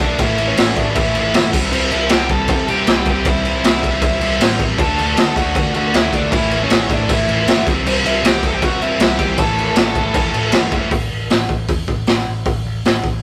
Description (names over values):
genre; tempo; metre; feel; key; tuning
punk rock; 156 BPM; 4/4; straight; unclear; A4 = 440 Hz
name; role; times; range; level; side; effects
bluesy overdriven lead guitar; melody; 0.0-10.5 s; C4 to A5; -23 LUFS; equal; distortion
cranked stack guitar; riff; 0.0-10.9 s; A2 to A4; -29 LUFS; equal; none
distorted electric guitar; riff; 0.0-10.9 s; A2 to D4; -32 LUFS; equal; none
overdriven electric guitar; riff; 0.0-10.9 s; A2 to D4; -27 LUFS; equal; none
overdriven picked electric bass; bass; 0.0-13.2 s; G1 to D3; -27 LUFS; equal; none
raw garage drum kit; drums; 0.0-13.1 s; crash cymbal, hi-hat, kick drum, snare drum; -18 LUFS; equal; none
room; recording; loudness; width
light reverb; rough rehearsal-room recording, warm saturation; -16 LUFS; mono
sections
0.0-10.9 A section; 10.9-13.2 B section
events
none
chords
0.2 A; 1.5 C; 4.8 D; 6.3 A; 7.7 C; 9.4 A; 10.9 A5